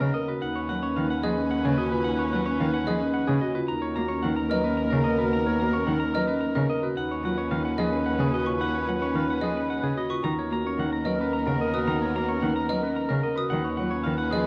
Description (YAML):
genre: classical, minimalist pattern music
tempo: 110 BPM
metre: 3/4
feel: straight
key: unclear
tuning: A4 = 440 Hz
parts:
  - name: clean electric guitar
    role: melody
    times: 0.0-14.5 s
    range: Ab4 to A#5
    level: -36 LUFS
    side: equal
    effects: none
  - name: warm oboe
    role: second line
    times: 0.0-14.5 s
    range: A#4 to Cb5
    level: -37 LUFS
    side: equal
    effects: none
  - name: rich cello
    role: accompaniment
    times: 0.0-14.4 s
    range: Db3 to A#3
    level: -33 LUFS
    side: equal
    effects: none
  - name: clear studio violin section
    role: sustained chords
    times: 0.0-14.5 s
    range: B3 to Cb5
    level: -38 LUFS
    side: equal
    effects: none
  - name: rich double bass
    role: bass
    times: 0.0-14.5 s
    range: Eb2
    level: -33 LUFS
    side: equal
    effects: none
  - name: marimba with soft mallets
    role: arpeggios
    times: 0.1-14.5 s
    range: Db4 to B4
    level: -31 LUFS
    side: equal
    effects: none
  - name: xylophone with plastic mallets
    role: arpeggios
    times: 1.2-14.5 s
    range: Eb5 to D#6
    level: -37 LUFS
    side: equal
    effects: none
room: moderate scoring stage reverb, RT60 1.9 s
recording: worn, warbling old tape, cassette tape, warbly pitch drift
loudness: -26 LUFS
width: mono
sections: 0.0-14.5 A section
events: none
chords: 0.4 Db9sus4/Eb; 3.7 Bmaj7/D#; 7.0 Db9sus4/Eb; 10.2 Bmaj7/D#; 13.5 Db9sus4/Eb